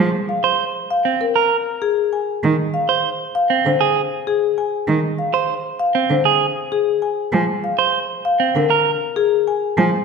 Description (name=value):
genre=classical, minimalist pattern music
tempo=98 BPM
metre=4/4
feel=straight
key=Bb mixolydian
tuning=A4 = 439 Hz
part: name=warm cello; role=accompaniment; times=0.0-9.9 s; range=D3 to F3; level=-20 LUFS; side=right 3 dB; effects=none
part: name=marimba with medium hard mallets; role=melody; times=0.3-10.0 s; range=Ab4 to Ab5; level=-20 LUFS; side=left 6 dB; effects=none
part: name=clean electric guitar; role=arpeggios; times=0.4-8.9 s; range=C4 to C5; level=-19 LUFS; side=right 9 dB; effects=none
room=wet scoring stage reverb, RT60 1.6 s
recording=none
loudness=-16 LUFS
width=side -5 dB against mid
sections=0.0-10.0 A section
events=none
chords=0.0 Bb5; 2.4 Fm (rootless); 7.3 Bb7(no3)